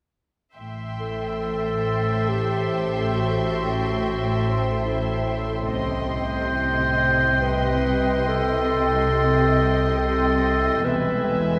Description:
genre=cinematic, suspense film score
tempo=70 BPM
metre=3/4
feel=straight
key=A dorian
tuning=A4 = 440 Hz
part: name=muted studio violin section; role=melody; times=0.6-11.6 s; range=G#5 to C6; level=-36 LUFS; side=equal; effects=none
part: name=muted studio violin section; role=second line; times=0.6-11.6 s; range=Eb5 to G5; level=-33 LUFS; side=equal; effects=none
part: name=glassy FM pad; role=sustained chords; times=1.5-11.6 s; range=E4 to G#5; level=-33 LUFS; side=equal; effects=ensemble chorus, built-in reverb
part: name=muted studio cello section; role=bass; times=0.6-11.6 s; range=E2 to C3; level=-30 LUFS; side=equal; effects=none
part: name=muted studio double bass section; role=bass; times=0.6-11.6 s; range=E1 to C2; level=-31 LUFS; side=equal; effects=none
part: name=organ-like drone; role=drone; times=2.0-11.6 s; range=A1 to E2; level=-32 LUFS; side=equal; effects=ensemble chorus, built-in reverb
part: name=mellow clarinet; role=second line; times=1.0-11.6 s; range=E4 to C5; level=-26 LUFS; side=equal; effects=none
room=wet cathedral reverb, RT60 6.4 s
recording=recorded in a church or concert hall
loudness=-22 LUFS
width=mono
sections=0.6-11.6 A section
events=none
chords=0.6 Am7; 5.7 Cm; 10.9 E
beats=| 0.57 1.43 2.28 | 3.14 4.00 4.86 | 5.71 6.57 7.43 | 8.28 9.14 10.00 | 10.86

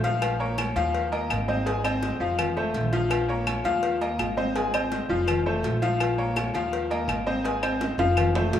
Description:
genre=latin, salsa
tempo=166 BPM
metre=4/4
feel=straight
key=Bb minor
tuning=A4 = 440 Hz
part: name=bright upright piano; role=accompaniment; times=0.0-8.6 s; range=F3 to Ab5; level=-25 LUFS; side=left 1 dB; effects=none
part: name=upright bass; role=bass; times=0.0-8.6 s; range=F1 to Eb2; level=-30 LUFS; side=equal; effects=none
part: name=congas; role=percussion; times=0.0-8.6 s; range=none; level=-34 LUFS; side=left 1 dB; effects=none
part: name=cowbell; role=percussion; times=0.0-8.6 s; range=none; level=-35 LUFS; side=left 7 dB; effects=none
part: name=agogo bells and timbales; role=percussion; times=0.2-8.6 s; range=none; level=-33 LUFS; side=right 2 dB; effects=none
part: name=claves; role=percussion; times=0.2-8.4 s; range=none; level=-35 LUFS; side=left 3 dB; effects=none
room=wet plate reverb, RT60 3.5 s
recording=rough home demo mix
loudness=-23 LUFS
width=side -10 dB against mid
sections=0.0-8.6 A section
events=drum fill 2.6-3.1, 7.8-8.6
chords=0.2 Bbm; 0.9 Ebsus2; 1.7 Ab; 2.4 F; 3.1 Bbm; 3.8 Ebsus2; 4.6 Ab; 5.3 F; 6.0 Bbm; 6.7 Ebsus2; 7.5 Ab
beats=| 0.22 0.58 0.94 1.30 | 1.66 2.03 2.39 2.75 | 3.11 3.47 3.83 4.19 | 4.56 4.92 5.28 5.64 | 6.00 6.36 6.73 7.09 | 7.45 7.81 8.17 8.54

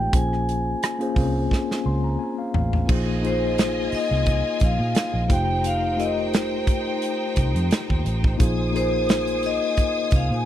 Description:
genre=lush 1970s-style soul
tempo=87 BPM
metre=4/4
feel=swing 54% on 16ths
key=unclear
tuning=A4 = 441 Hz
part: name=vibraphone with hard mallets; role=melody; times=0.0-10.4 s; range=C5 to Ab5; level=-26 LUFS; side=left 2 dB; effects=none
part: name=mellow tine electric piano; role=accompaniment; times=0.0-10.5 s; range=Ab3 to C6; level=-27 LUFS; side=left 3 dB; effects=fast stereo tremolo
part: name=vintage muted fingered electric bass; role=bass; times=0.0-10.4 s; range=F1 to Bb2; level=-25 LUFS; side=right 1 dB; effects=none
part: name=modern studio drum kit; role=drums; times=0.1-10.3 s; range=crash cymbal, hi-hat, kick drum, rim click, snare drum, toms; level=-22 LUFS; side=right 1 dB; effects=none
part: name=clear studio string section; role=second line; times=2.9-10.5 s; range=Eb4 to Eb6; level=-31 LUFS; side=equal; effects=none
room=studio reverb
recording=dry, close 1970s-style studio recording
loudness=-20 LUFS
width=side -11 dB against mid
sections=0.0-2.9 A section; 2.9-10.5 B section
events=drum fill 1.5-2.9; tine electric piano fill 1.5-2.9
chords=0.1 Bbm9; 2.9 Bb9sus4; 5.3 F9; 8.4 Bb9sus4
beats=| 0.13 0.82 1.51 2.20 | 2.89 3.58 4.26 4.95 | 5.64 6.33 7.02 7.71 | 8.40 9.09 9.78

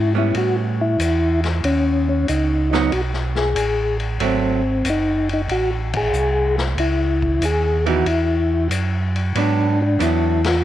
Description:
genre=soul jazz organ trio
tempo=93 BPM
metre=4/4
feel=swing 69% on 8ths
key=unclear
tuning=A4 = 441 Hz
part: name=percussive tonewheel organ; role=melody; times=0.0-10.6 s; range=B#3 to G#4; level=-20 LUFS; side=left 2 dB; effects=slow rotary speaker, chorus vibrato
part: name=mellow tonewheel organ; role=bass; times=0.0-10.6 s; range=F#1 to A2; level=-21 LUFS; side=right 1 dB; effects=slow rotary speaker
part: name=archtop guitar, miked and amplified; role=accompaniment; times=0.1-10.4 s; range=E3 to D#4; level=-24 LUFS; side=right 11 dB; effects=none
part: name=vintage drum kit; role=drums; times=0.3-10.5 s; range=hi-hat, kick drum, ride cymbal, snare drum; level=-27 LUFS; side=left 5 dB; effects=none
room=light reverb, small room reverb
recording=1960s-style stereo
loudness=-17 LUFS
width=side -12 dB against mid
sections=0.0-10.6 A section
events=band accent 5.8-6.1, 10.3-10.6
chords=0.3 A9; 1.6 G#m; 4.2 G#7b9; 6.8 C#madd9; 9.4 G#m7b5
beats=0.35 0.99 | 1.63 2.28 2.92 3.56 | 4.21 4.85 5.49 6.14 | 6.78 7.42 8.07 8.71 | 9.36 10.00

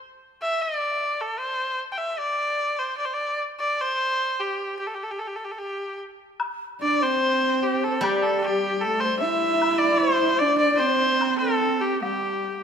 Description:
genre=chinese traditional, Chinese chamber ensemble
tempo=75 BPM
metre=2/4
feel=rubato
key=G zhi mode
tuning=A4 = 440 Hz
part: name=clear erhu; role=melody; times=0.4-12.6 s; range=G4 to G5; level=-24 LUFS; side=equal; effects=none
part: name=woodblock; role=percussion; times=6.4-12.2 s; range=none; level=-33 LUFS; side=left 2 dB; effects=none
part: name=mellow low xiao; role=second line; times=6.8-12.6 s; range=G4 to E5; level=-27 LUFS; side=left 8 dB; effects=none
part: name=warm horsehead fiddle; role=second line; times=6.8-12.6 s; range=G3 to E4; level=-26 LUFS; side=right 6 dB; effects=none
part: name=steel-string zither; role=accompaniment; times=8.0-10.4 s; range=G3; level=-29 LUFS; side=right 1 dB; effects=none
room=moderate concert hall reverb, RT60 2.2 s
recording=minimal, uncompressed stereo recording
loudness=-22 LUFS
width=side -7 dB against mid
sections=0.0-6.4 A section; 6.4-12.6 B section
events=none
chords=none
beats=0.80 | 1.60 2.39 | 3.18 3.97 | 4.77 5.58 | 6.40 7.23 | 8.04 8.84 | 9.62 10.41 | 11.21 12.03

